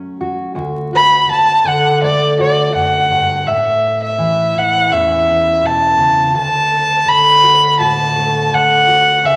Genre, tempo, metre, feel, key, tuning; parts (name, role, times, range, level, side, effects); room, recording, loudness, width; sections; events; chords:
folk; 83 BPM; 4/4; straight; D major; A4 = 440 Hz
fingerpicked steel-string acoustic guitar; accompaniment; 0.0-9.4 s; D2 to F#4; -21 LUFS; equal
dark violin; melody; 1.0-9.4 s; D5 to B5; -14 LUFS; equal
wet large studio reverb, RT60 1.4 s; vinyl crackle; -13 LUFS; mono
0.0-3.5 A section; 3.5-9.4 B section
violin solo 0.0-3.5
0.0 F#m; 0.6 D; 3.5 Aadd9; 6.3 D